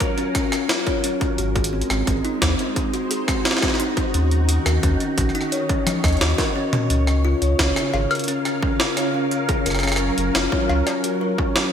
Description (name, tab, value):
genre	IDM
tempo	87 BPM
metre	4/4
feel	straight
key	unclear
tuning	A4 = 441 Hz
part	soft string machine	sustained chords	0.0-11.7 s	Db3 to F5	-26 LUFS	equal	phaser, ensemble chorus, vintage 12-bit sampler grit
part	kalimba	arpeggios	0.0-11.7 s	C4 to Eb5	-24 LUFS	left 2 dB	ping-pong delay
part	electronic kick drum	drums	0.0-11.5 s	none	-25 LUFS	equal	distortion, overdrive
part	jungle sampler-style drum kit	drums	0.0-11.7 s	cowbell, hi-hat, rim click, snare drum, toms	-24 LUFS	equal	overdrive, gated reverb
part	warm sub bass	bass	1.4-10.8 s	Gb1 to Eb2	-21 LUFS	equal	none
room	moderate lush hall reverb, RT60 2.6 s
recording	bright 1980s-style digital production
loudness	-18 LUFS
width	side -8 dB against mid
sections	0.0-6.9 A section; 6.9-11.7 B section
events	drum fill 5.9-6.9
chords	0.0 Gbmaj7; 1.4 Ab7; 4.1 Ebm7; 6.9 Db6; 9.7 Gbmaj7